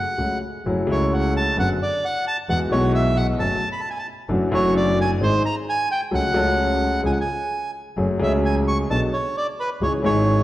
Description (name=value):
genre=tango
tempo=131 BPM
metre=4/4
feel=rubato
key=F# minor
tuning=A4 = 440 Hz
part: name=bandoneon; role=melody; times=0.0-10.4 s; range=B4 to C#6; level=-24 LUFS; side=right 1 dB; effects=none
part: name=warm grand piano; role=accompaniment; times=0.2-10.4 s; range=G#1 to A4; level=-23 LUFS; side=left 2 dB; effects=none
part: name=clear double bass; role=bass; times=0.2-10.4 s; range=F#1 to E2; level=-24 LUFS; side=right 1 dB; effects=none
room=moderate concert hall reverb, RT60 1.8 s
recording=worn, warbling old tape, cassette tape, warbly pitch drift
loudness=-19 LUFS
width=side -15 dB against mid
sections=0.7-10.4 A section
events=none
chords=0.0 F#m; 0.7 F#m7; 1.6 Bm/F#; 2.5 Eadd9; 3.4 F#m; 4.3 Dadd9/F#; 5.2 G#; 6.1 F#m/C#; 7.0 C#; 8.0 F#madd9; 8.9 Bm7; 9.8 C#m